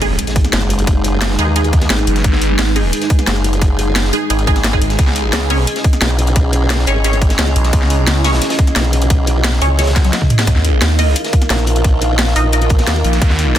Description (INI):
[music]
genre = dark technical drum and bass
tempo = 175 BPM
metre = 4/4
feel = straight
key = unclear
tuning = A4 = 439 Hz
[part]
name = dark analog pad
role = sustained chords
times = 0.0-13.6 s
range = G#3 to E#5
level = -23 LUFS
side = left 1 dB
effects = chorus, sidechain pumping
[part]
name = filtered dub chord stab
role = stabs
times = 0.0-12.7 s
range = G#3 to D#5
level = -21 LUFS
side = right 2 dB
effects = phaser, vintage 12-bit sampler grit, ping-pong delay
[part]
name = phased detuned saw bass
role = bass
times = 0.0-8.4, 10.5-13.6 s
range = F#1 to D#2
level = -14 LUFS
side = equal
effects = phaser, tube saturation, sidechain pumping
[part]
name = crunchy breakbeat drum kit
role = drums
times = 0.0-13.6 s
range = hi-hat, snare drum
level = -27 LUFS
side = equal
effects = none
[part]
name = drum and bass drum kit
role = drums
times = 0.0-13.6 s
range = hi-hat, snare drum, toms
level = -18 LUFS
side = left 1 dB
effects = overdrive
[part]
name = impact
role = sound effects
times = 0.0-0.9 s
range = none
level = -26 LUFS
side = equal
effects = none
[part]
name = granular cloud pad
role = texture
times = 0.0-13.6 s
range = C#4 to G#5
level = -24 LUFS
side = right 1 dB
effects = built-in reverb, sidechain pumping
[part]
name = electronic kick drum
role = drums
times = 0.4-13.3 s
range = none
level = -13 LUFS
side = equal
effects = overdrive
[part]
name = formant-sweep wobble bass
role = bass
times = 0.5-13.0 s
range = F#1 to D#2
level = -15 LUFS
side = equal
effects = chorus
[sound]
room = little or no reverb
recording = dense, heavily limited modern master, faint mains hum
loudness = -12 LUFS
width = side -11 dB against mid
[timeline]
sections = 0.0-13.6 A section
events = impact 0.0-0.9; drum fill 10.0-10.5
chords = 0.0 G#m; 5.0 C#m; 10.5 D#add9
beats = 0.19 0.53 | 0.87 1.22 1.56 1.90 | 2.25 2.59 2.93 3.27 | 3.62 3.96 4.30 4.64 | 4.99 5.33 5.67 6.02 | 6.36 6.70 7.04 7.39 | 7.73 8.07 8.42 8.76 | 9.10 9.45 9.79 10.13 | 10.47 10.82 11.16 11.50 | 11.85 12.19 12.53 12.87 | 13.22 13.56